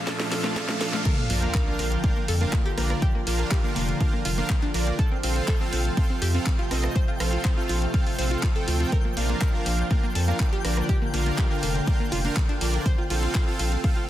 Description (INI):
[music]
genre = progressive house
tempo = 122 BPM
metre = 4/4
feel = straight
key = Bb major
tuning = A4 = 439 Hz
[part]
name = evolving wavetable pad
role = sustained chords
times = 0.0-14.1 s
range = Bb2 to F5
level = -32 LUFS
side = equal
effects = chorus, built-in reverb, sidechain pumping
[part]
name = soft supersaw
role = stabs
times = 0.0-13.9 s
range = C4 to G5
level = -30 LUFS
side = right 2 dB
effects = sidechain pumping, digital delay
[part]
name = riser and sub drop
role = sound effects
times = 0.0-3.0 s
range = none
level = -34 LUFS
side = equal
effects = none
[part]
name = twinkling granular texture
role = texture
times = 0.0-14.1 s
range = F5 to G6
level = -39 LUFS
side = equal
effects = built-in reverb, sidechain pumping
[part]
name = analog pluck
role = arpeggios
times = 0.1-14.0 s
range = A3 to C5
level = -33 LUFS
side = equal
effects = chorus, sidechain pumping, digital delay
[part]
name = electronic kick drum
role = drums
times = 0.1-13.9 s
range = none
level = -24 LUFS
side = equal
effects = overdrive, high-pass filter on kick, high-pass filter on room
[part]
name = house drum kit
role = drums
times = 0.1-13.9 s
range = crash cymbal, handclaps, hi-hat, rim click, snare drum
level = -32 LUFS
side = equal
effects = none
[part]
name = round analog bass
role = bass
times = 1.3-13.8 s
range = F1 to F2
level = -25 LUFS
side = equal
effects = tube saturation, sidechain pumping
[sound]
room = light reverb, digital ambience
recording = dense, heavily limited modern master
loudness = -22 LUFS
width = side -13 dB against mid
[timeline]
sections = 0.0-1.1 A section; 1.1-14.1 B section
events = build-up 0.0-1.1; drum fill 0.0-1.1; riser 0.0-1.1; drop 1.1-14.1; impact 1.1-3.0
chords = 0.0 F/Bb; 1.1 Bb; 5.0 F/Bb; 8.9 Bb; 12.9 F/Bb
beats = 0.07 0.56 | 1.05 1.55 2.04 2.53 | 3.02 3.51 4.00 4.50 | 4.99 5.48 5.97 6.46 | 6.96 7.45 7.94 8.43 | 8.92 9.41 9.91 10.40 | 10.89 11.38 11.87 12.37 | 12.86 13.35 13.84